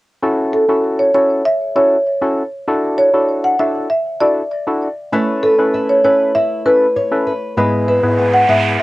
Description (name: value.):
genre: dancehall.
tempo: 98 BPM.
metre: 4/4.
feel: straight.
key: F# minor.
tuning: A4 = 440 Hz.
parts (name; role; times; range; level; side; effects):
percussive organ stab; accompaniment; 0.2-8.8 s; G#2 to B4; -17 LUFS; left 1 dB; chorus, cassette tape.
marimba with medium mallets; melody; 0.5-8.8 s; A4 to F#5; -14 LUFS; equal; cassette tape, tape echo.
flamenco guitar; arpeggios; 5.1-8.8 s; G#3 to C#5; -22 LUFS; equal; cassette tape.
noise sweep; sound effects; 7.9-8.8 s; none; -21 LUFS; right 4 dB; none.
room: moderate booth ambience, RT60 0.2 s.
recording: home recording on cassette.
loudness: -13 LUFS.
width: side -19 dB against mid.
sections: 0.2-8.8 A section.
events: noise sweep 7.9-8.8.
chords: 0.2 F#m7; 2.7 Dadd9; 5.1 Aadd9; 7.6 E/G#.